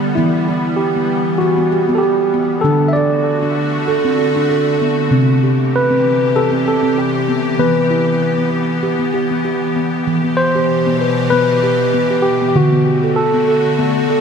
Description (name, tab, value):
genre	world meditative, meditative tuned percussion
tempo	97 BPM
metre	4/4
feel	swing 54% on 16ths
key	E minor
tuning	A4 = 440 Hz
part	evolving wavetable pad	sustained chords	0.0-14.2 s	B2 to G4	-20 LUFS	equal	ensemble chorus, built-in reverb
part	steel tongue drum	arpeggios	0.0-14.2 s	C3 to B4	-16 LUFS	right 1 dB	none
part	tine electric piano	melody	0.2-14.2 s	E4 to E5	-17 LUFS	moving between left 7 dB and right 3 dB	auto-pan, ping-pong delay
room	wet scoring stage reverb, RT60 1.7 s, studio reverb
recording	none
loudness	-13 LUFS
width	side -6 dB against mid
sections	0.0-10.1 A section; 10.1-14.2 B section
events	none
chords	0.2 Em; 2.6 D; 5.1 C; 7.6 Em; 12.6 D